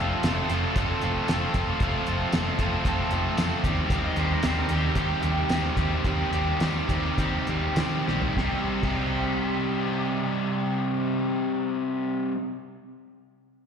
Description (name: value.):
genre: classic rock.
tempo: 97-115 BPM.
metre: 4/4.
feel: straight.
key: C dorian.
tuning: A4 = 440 Hz.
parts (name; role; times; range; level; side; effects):
distorted electric guitar; riff; 0.0-12.4 s; C3 to A4; -29 LUFS; left 10 dB; distortion, slapback echo.
distorted electric guitar; riff; 0.0-12.4 s; C3 to A4; -28 LUFS; right 9 dB; distortion.
hollow-body short-scale picked electric bass; bass; 0.0-12.3 s; F1 to Eb3; -29 LUFS; equal; none.
cloth-damped thuddy drum kit; drums; 0.2-9.0 s; crash cymbal, hi-hat, kick drum, snare drum, tambourine, toms; -29 LUFS; equal; none.
raw garage guitar; second line; 3.9-12.3 s; G4 to F5; -35 LUFS; equal; overdrive, digital delay, slapback echo.
room: light reverb, studio reverb.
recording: live gig heard through the venue's PA, recital hall reverb.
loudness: -23 LUFS.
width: side -7 dB against mid.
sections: 0.0-8.4 A section; 8.4-13.3 B section.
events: slowing down 3.9-8.4; drum fill 8.1-8.4.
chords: 0.0 F; 3.6 Cm/Eb; 8.4 Cm.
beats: 0.24 0.76 1.29 | 1.81 2.33 2.86 3.38 | 3.91 4.43 4.97 5.50 | 6.05 6.61 7.18 7.77 | 8.38 9.00 9.62 10.23 | 10.85 11.47 12.09.